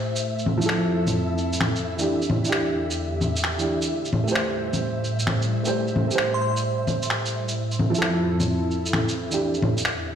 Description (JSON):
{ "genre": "future garage", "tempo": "131 BPM", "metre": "4/4", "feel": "swing 66% on 16ths", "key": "A minor", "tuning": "A4 = 440 Hz", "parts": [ { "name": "dark upright piano", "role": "accompaniment", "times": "0.0-9.5 s", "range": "E3 to C5", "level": "-26 LUFS", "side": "right 2 dB", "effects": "vintage 12-bit sampler grit, tape echo" }, { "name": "warbly tape-like pad", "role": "sustained chords", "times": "0.0-10.2 s", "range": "E2 to C5", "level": "-27 LUFS", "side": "equal", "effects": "chorus, built-in reverb, phaser" }, { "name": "flickering grainy texture", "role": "texture", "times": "0.0-10.2 s", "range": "E5", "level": "-36 LUFS", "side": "left 3 dB", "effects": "built-in reverb" }, { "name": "electronic shaker, bongos and finger snaps", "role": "drums", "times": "0.2-10.0 s", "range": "none", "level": "-25 LUFS", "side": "left 1 dB", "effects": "overdrive" }, { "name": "glassy synth bell", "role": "melody", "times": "6.3-6.5 s", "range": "C6", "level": "-32 LUFS", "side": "left 2 dB", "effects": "chorus, analog delay" } ], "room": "wet scoring stage reverb, RT60 1.7 s, digital ambience", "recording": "played on a big sound system in a bare room, stone room reverb", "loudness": "-21 LUFS", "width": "side -8 dB against mid", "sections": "0.0-10.2 A section", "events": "none", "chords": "0.2 Fmaj7; 2.1 Em7; 3.9 Am7; 7.6 Fmaj7; 9.4 Em7" }